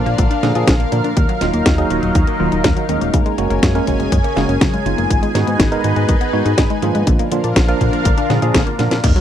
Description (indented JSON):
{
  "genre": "italo disco",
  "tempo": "122 BPM",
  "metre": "4/4",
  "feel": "straight",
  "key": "unclear",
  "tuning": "A4 = 440 Hz",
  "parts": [
    { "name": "lush unison pad", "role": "sustained chords", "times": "0.0-9.2 s", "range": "Gb3 to Ab5", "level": "-21 LUFS", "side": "left 1 dB", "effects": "chorus, phaser" },
    { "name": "tine electric piano", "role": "stabs", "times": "0.0-9.0 s", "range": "F3 to Bb4", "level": "-22 LUFS", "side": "right 4 dB", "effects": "auto-pan, tape echo" },
    { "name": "chorused synth bass", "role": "bass", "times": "0.0-9.1 s", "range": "Eb1 to Bb2", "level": "-20 LUFS", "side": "equal", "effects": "none" },
    { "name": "analog pluck", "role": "arpeggios", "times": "0.1-9.2 s", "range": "Db3 to F4", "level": "-22 LUFS", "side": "left 4 dB", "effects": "chorus, phaser, tape echo" },
    { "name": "house drum kit", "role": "drums", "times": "0.1-9.2 s", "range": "crash cymbal, hi-hat, snare drum", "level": "-19 LUFS", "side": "equal", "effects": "none" },
    { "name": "electronic kick drum", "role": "drums", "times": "0.2-9.1 s", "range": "none", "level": "-17 LUFS", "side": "equal", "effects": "none" },
    { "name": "impact", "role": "sound effects", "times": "9.0-9.2 s", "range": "none", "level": "-17 LUFS", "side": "equal", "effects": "none" }
  ],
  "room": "little or no reverb",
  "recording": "dry, close 1970s-style studio recording",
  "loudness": "-13 LUFS",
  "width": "side -10 dB against mid",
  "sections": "0.0-9.0 A section",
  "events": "band accent 8.5; drum fill 8.8; impact 9.0",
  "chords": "0.0 Bb; 1.2 Ebmadd9; 3.1 Gbadd9; 5.1 Abm7; 7.1 Bb",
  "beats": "0.19 0.68 | 1.17 1.66 2.15 2.65 | 3.14 3.63 4.12 4.61 | 5.10 5.60 6.09 6.58 | 7.07 7.56 8.05 8.55 | 9.04"
}